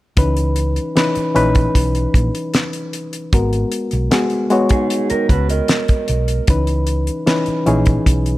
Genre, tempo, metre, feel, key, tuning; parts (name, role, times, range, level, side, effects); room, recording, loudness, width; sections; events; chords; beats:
lush 1970s-style soul; 76 BPM; 4/4; straight; C# dorian; A4 = 440 Hz
reed electric piano; accompaniment; 0.2-8.4 s; E3 to C#5; -19 LUFS; left 2 dB
hollow-body short-scale fingered electric bass; bass; 0.2-8.4 s; G#1 to C#2; -18 LUFS; equal
damped 70s drum kit; drums; 0.2-8.4 s; hi-hat, kick drum, snare drum; -17 LUFS; equal
electric guitar through a small old amp; riff; 4.7-6.4 s; D#4 to D#5; -21 LUFS; right 6 dB
little or no reverb; -14 LUFS; side -17 dB against mid
0.2-8.4 A section
0.2 C#m9; 3.3 G#m9; 6.5 C#m9
| 0.17 0.96 1.75 2.54 | 3.33 4.12 4.91 5.70 | 6.48 7.27 8.06